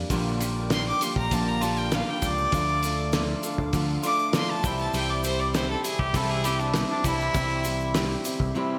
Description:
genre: folk rock and heartland rock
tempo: 99 BPM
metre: 4/4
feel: straight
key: unclear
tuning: A4 = 439 Hz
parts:
  - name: picked steel-string acoustic guitar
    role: accompaniment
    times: 0.0-8.8 s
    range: Bb2 to A4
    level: -35 LUFS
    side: equal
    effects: none
  - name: electric guitar through a small old amp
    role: riff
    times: 0.0-8.8 s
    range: Bb2 to F4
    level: -34 LUFS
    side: equal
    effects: spring reverb
  - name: picked electric bass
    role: bass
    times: 0.0-8.5 s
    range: Bb1 to D2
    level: -33 LUFS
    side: equal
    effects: none
  - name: accordion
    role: sustained chords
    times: 0.1-8.8 s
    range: G4 to D6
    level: -42 LUFS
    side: equal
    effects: none
  - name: cloth-damped thuddy drum kit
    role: drums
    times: 0.1-8.5 s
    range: hi-hat, kick drum, snare drum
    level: -32 LUFS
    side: equal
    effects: gated reverb
  - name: tube shaker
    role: percussion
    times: 0.1-8.4 s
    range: none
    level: -43 LUFS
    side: equal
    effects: none
  - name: clear fiddle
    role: melody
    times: 0.7-8.2 s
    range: D4 to D6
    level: -30 LUFS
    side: equal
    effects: digital delay
room: moderate lush hall reverb, RT60 1.6 s, small room ambience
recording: bright 1980s-style digital production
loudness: -26 LUFS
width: mono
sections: 0.0-8.8 A section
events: fiddle solo 0.0-8.8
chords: 0.1 Bb6; 2.5 Dm; 4.6 C

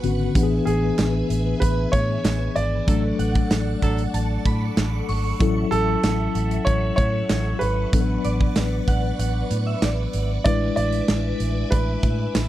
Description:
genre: 1980s-style pop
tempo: 95 BPM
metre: 4/4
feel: straight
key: unclear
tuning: A4 = 440 Hz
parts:
  - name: shimmering bell with halo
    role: second line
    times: 0.0-10.3 s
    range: D5 to C#6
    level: -34 LUFS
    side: right 3 dB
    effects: ensemble chorus, tremolo, tape echo
  - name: mellow tine electric piano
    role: accompaniment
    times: 0.0-12.5 s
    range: D3 to B4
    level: -26 LUFS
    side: left 5 dB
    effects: medium stereo tremolo
  - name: phased string machine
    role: sustained chords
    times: 0.0-12.5 s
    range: A4 to D6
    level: -33 LUFS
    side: right 2 dB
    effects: ensemble chorus, phaser
  - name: vintage muted fingered electric bass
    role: bass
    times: 0.0-12.5 s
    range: G#1 to A2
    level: -24 LUFS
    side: equal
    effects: none
  - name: big rock drum kit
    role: drums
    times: 0.0-12.5 s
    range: hi-hat, kick drum, snare drum, tambourine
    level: -24 LUFS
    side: right 1 dB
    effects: none
  - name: clear grand piano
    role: melody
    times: 0.7-12.5 s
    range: G#4 to D5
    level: -27 LUFS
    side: right 2 dB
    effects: tape echo
  - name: group handclap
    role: percussion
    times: 1.0-12.5 s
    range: none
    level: -38 LUFS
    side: right 7 dB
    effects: none
  - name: warm horn section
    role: stabs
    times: 2.9-4.0 s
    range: F#3 to A4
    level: -29 LUFS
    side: right 5 dB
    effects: none
room: little or no reverb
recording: dry, close 1970s-style studio recording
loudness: -19 LUFS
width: side -14 dB against mid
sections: 0.0-12.5 A section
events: band accent 2.9-5.4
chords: 0.4 E7/A; 2.9 Dmaj7/A; 5.4 A6; 7.9 Bmadd9/A; 10.5 E7/A

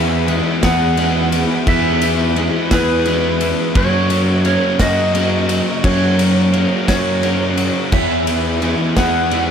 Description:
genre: post-rock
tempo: 58 BPM (dotted quarters)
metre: 6/8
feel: straight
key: E lydian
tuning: A4 = 440 Hz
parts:
  - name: clean lap steel guitar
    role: melody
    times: 0.0-9.5 s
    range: B4 to F#5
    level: -20 LUFS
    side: right 1 dB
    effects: slapback echo
  - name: twelve-string electric guitar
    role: arpeggios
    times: 0.0-9.5 s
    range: E2 to G#4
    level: -24 LUFS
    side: left 2 dB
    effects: slapback echo
  - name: sludgy distorted guitar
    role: riff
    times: 0.0-9.5 s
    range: E3 to G#4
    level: -20 LUFS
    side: equal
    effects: overdrive
  - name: fuzz picked electric bass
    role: bass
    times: 0.0-9.5 s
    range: E2 to F#2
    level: -19 LUFS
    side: equal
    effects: overdrive
  - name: loose indie drum kit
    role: drums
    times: 0.3-9.5 s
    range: crash cymbal, kick drum, ride cymbal, snare drum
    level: -20 LUFS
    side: equal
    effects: none
room: light reverb, studio ambience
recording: none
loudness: -13 LUFS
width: side -7 dB against mid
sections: 0.0-9.5 A section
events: none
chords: 0.0 E; 3.8 F#; 7.9 E

